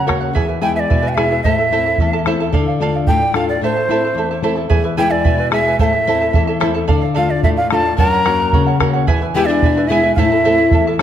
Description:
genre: andean folk, Andean ensemble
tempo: 110 BPM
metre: 2/4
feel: straight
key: A harmonic minor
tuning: A4 = 442 Hz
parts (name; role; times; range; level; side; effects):
- breathy bright large quena; melody; 0.0-10.9 s; C5 to Bb5; -18 LUFS; right 1 dB; none
- charango; accompaniment; 0.0-11.0 s; E4 to A5; -20 LUFS; right 5 dB; none
- flamenco guitar; accompaniment; 0.0-11.0 s; E2 to F#4; -19 LUFS; left 5 dB; none
- bombo; percussion; 0.1-11.0 s; none; -18 LUFS; right 2 dB; none
- breathy bright pan flute; second line; 8.0-10.9 s; D4 to A#4; -19 LUFS; left 4 dB; none
room: moderate recital hall reverb, RT60 1.5 s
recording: none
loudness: -13 LUFS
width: side -10 dB against mid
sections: 0.0-4.7 A section; 4.7-11.0 A section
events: none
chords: 0.4 E; 1.4 Am; 2.5 Dm; 3.6 Am; 4.7 E; 5.8 Am; 6.9 Dm; 8.0 F#; 9.1 E; 10.2 Am

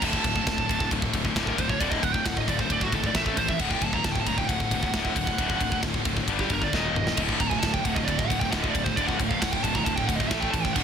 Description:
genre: heavy metal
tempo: 134 BPM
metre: 4/4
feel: straight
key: D major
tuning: A4 = 440 Hz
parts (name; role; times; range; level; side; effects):
- high-gain lead guitar; melody; 0.0-10.8 s; F#4 to Bb5; -29 LUFS; right 3 dB; distortion, ping-pong delay
- high-gain distorted guitar; riff; 0.0-10.8 s; D2 to A3; -30 LUFS; left 7 dB; distortion
- high-gain distorted guitar; riff; 0.0-10.8 s; D2 to A3; -33 LUFS; right 2 dB; distortion
- fuzz fingered electric bass; bass; 0.0-10.8 s; D1 to A1; -32 LUFS; right 1 dB; overdrive
- tight metal drum kit; drums; 0.0-10.8 s; crash cymbal, kick drum, ride cymbal, snare drum, toms; -28 LUFS; equal; none
- heavy high-gain guitar; riff; 7.2-10.8 s; D2 to A3; -33 LUFS; right 15 dB; distortion
room: small room reverb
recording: dense, heavily limited modern master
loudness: -23 LUFS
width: side -7 dB against mid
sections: 0.0-10.8 A section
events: lead electric guitar solo 0.0-10.8; drum fill 6.7-7.2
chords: 0.0 D5; 3.2 A5; 3.6 D; 6.3 G5; 6.7 Eb5; 7.2 D5; 10.3 A5

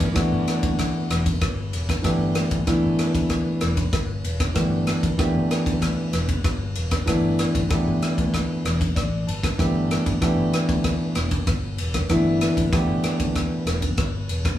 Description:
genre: electric jazz fusion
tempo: 96 BPM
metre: 4/4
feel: straight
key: G major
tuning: A4 = 440 Hz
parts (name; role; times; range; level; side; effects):
- dark baby grand piano; accompaniment; 0.0-13.8 s; E3 to A5; -22 LUFS; equal; none
- fingered electric bass; bass; 0.0-14.5 s; E1 to D2; -27 LUFS; left 1 dB; none
- modern studio drum kit; drums; 0.0-14.6 s; kick drum, ride cymbal, rim click; -24 LUFS; equal; none
room: moderate studio reverb, RT60 0.6 s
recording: band playing live in one room, small room ambience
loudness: -20 LUFS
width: side -12 dB against mid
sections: 0.0-14.6 A section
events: grand piano fill 8.6-9.6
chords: 0.0 G69

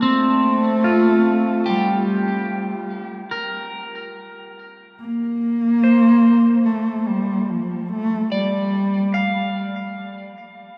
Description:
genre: ambient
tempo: 73 BPM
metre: 4/4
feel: straight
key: unclear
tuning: A4 = 442 Hz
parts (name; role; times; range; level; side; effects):
- dark cello; melody; 0.0-9.5 s; F3 to Bb3; -20 LUFS; equal; delay
- electric guitar at the edge of break-up; arpeggios; 0.0-10.8 s; C4 to F5; -25 LUFS; equal; phaser, delay
room: wet cathedral reverb, RT60 5.4 s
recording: in a vast, echoing space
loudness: -19 LUFS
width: mono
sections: 0.0-5.0 A section; 5.0-10.8 B section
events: none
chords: 0.0 G7sus2 (rootless); 1.7 Gm; 5.0 C9sus4

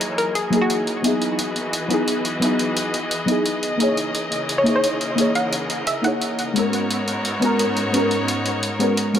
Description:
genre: liquid drum and bass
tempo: 174 BPM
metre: 4/4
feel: straight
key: C# dorian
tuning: A4 = 440 Hz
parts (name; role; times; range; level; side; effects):
- deep mellow chord stab; accompaniment; 0.0-9.2 s; F#3 to C#5; -21 LUFS; equal; ensemble chorus, dub echo
- bright studio string section; sustained chords; 0.0-9.2 s; G#2 to D#5; -25 LUFS; left 1 dB; low-pass filter
- electronic hi-hat; drums; 0.0-9.2 s; none; -27 LUFS; equal; none
- hollow square pluck; melody; 0.2-1.1, 4.6-6.3 s; F#4 to F#5; -25 LUFS; equal; chorus, dub echo
room: moderate spring reverb, RT60 1.6 s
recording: echo-heavy mix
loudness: -18 LUFS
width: side -9 dB against mid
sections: 0.0-9.2 A section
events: none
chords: 0.0 F#13; 1.0 Emaj9; 3.8 C#m69; 6.6 G#m11

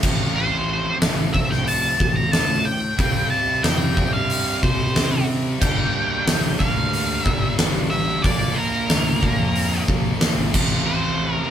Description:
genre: quiet-loud alternative rock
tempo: 91 BPM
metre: 4/4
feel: straight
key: unclear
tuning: A4 = 435 Hz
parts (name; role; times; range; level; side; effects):
- fuzz guitar; riff; 0.0-11.5 s; G2 to F4; -28 LUFS; right 5 dB; distortion
- tight distorted guitar; riff; 0.0-11.5 s; F2 to C4; -29 LUFS; left 6 dB; distortion
- fuzz fingered electric bass; bass; 0.0-11.4 s; G1 to C3; -26 LUFS; equal; overdrive
- huge arena drum kit; drums; 0.0-10.7 s; crash cymbal, hi-hat, kick drum, snare drum; -21 LUFS; equal; none
- octave-fuzz lead guitar; melody; 0.4-11.5 s; Bb4 to Bb5; -24 LUFS; equal; distortion
- sludgy distorted guitar; riff; 5.6-11.5 s; F2 to Bb3; -31 LUFS; right 2 dB; none
room: moderate studio reverb, RT60 0.8 s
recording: band playing live in one room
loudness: -18 LUFS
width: side -9 dB against mid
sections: 0.0-11.5 A section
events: none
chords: 0.0 F/A; 3.0 Csus4; 5.6 Gmadd9; 8.2 Bb; 10.5 F/A

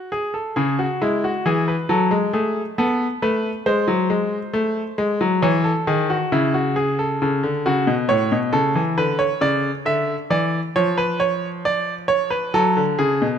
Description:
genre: classical, baroque-style two-part invention for grand piano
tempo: 68 BPM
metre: 4/4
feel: straight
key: F# minor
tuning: A4 = 440 Hz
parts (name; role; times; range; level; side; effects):
- bright baby grand piano; solo; 0.0-13.4 s; A2 to E5; -18 LUFS; equal; none
room: light reverb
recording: close, detailed microphones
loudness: -18 LUFS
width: side -8 dB against mid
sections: 0.0-13.4 A section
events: none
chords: 0.1 C#m; 1.9 F#madd11; 3.7 G#7; 5.4 C#m; 7.2 F#m; 9.0 Bmadd11 (rootless); 10.8 C#7/E#; 12.5 F#m

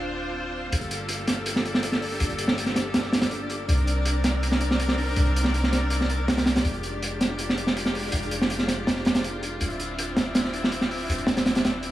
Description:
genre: drum and bass, jungle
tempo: 162 BPM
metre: 4/4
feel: straight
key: G minor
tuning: A4 = 440 Hz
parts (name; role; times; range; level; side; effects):
- bright studio string section; sustained chords; 0.0-11.9 s; Eb3 to C5; -31 LUFS; left 1 dB; none
- warm 808-style bass; bass; 0.0-11.9 s; D1 to C2; -29 LUFS; equal; none
- twinkling granular texture; texture; 0.0-11.9 s; D4 to F5; -35 LUFS; equal; built-in reverb
- crunchy breakbeat drum kit; drums; 0.7-11.9 s; hi-hat, snare drum; -24 LUFS; right 1 dB; none
room: light reverb, studio reverb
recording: small room ambience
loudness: -22 LUFS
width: side -14 dB against mid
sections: 0.0-11.9 A section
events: none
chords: 0.0 Dm7; 0.7 Gm9; 3.7 Cm9; 6.6 Fm9; 9.6 Dm9

